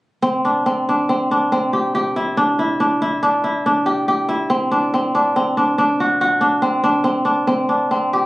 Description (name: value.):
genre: contemporary instrumental, contemporary.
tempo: 141 BPM.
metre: 5/4.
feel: straight.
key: C lydian.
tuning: A4 = 437 Hz.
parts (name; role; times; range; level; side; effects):
kora; arpeggios; 0.2-8.3 s; C4 to G4; -15 LUFS; equal; none.
room: wet studio reverb, RT60 0.5 s.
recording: recorded on a phone in the room, club ambience.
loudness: -15 LUFS.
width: side -19 dB against mid.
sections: 0.2-8.3 A section.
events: none.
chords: 0.2 C5; 4.5 D; 6.6 Csus2.